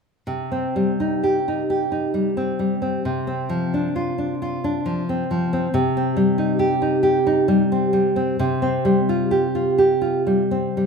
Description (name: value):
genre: classical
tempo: 57-70 BPM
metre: 3/4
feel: rubato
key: C minor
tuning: A4 = 440 Hz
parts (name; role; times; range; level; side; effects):
- nylon-string guitar; accompaniment; 0.3-10.9 s; C3 to G4; -18 LUFS; equal; none
room: moderate large studio reverb, RT60 1.3 s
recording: band playing live in one room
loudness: -18 LUFS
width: side -5 dB against mid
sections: 0.3-10.9 A section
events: none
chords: 0.3 Cm; 3.1 Csus24; 5.8 Cm; 8.4 Csus4